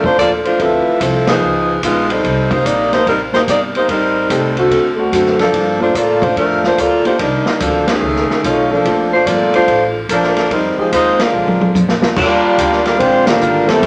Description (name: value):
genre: jazz, big band swing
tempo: 145 BPM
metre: 4/4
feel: swing 65% on 8ths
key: Bb major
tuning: A4 = 440 Hz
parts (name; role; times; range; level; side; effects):
- warm saxophone section; melody; 0.0-13.9 s; D3 to D5; -16 LUFS; equal; none
- picked steel-string acoustic guitar; accompaniment; 0.0-13.9 s; F2 to A4; -27 LUFS; equal; none
- warm grand piano; accompaniment; 0.0-13.8 s; Eb2 to E5; -24 LUFS; equal; none
- upright bass; bass; 0.0-13.9 s; G1 to A2; -28 LUFS; equal; none
- vintage drum kit; drums; 0.0-13.9 s; crash cymbal, hi-hat, kick drum, ride cymbal, snare drum, toms; -22 LUFS; equal; none
- warm trombone section; second line; 11.2-13.9 s; C3 to D4; -20 LUFS; equal; none
room: wet studio reverb, RT60 0.6 s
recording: none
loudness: -14 LUFS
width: mono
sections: 0.0-12.2 A section; 12.2-13.9 B section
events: band accent 1.2, 7.8, 11.1, 13.2; drum fill 11.3-12.2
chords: 0.0 Bbmaj7; 0.6 Dm9; 1.4 Db9; 2.2 Cm7; 3.9 Am7b5; 4.7 D7; 5.5 Gm9; 7.2 Cm9; 8.0 F7alt; 8.8 Bbmaj7; 10.5 Fm7; 11.3 Bb7; 12.2 Ebmaj9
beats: 0.18 | 0.59 1.00 1.41 1.83 | 2.24 2.65 3.06 3.47 | 3.89 4.30 4.71 5.12 | 5.54 5.95 6.36 6.78 | 7.19 7.60 8.02 8.43 | 8.85 9.26 9.68 10.09 | 10.51 10.92 11.34 11.75 | 12.17 12.58 13.00 13.41 | 13.83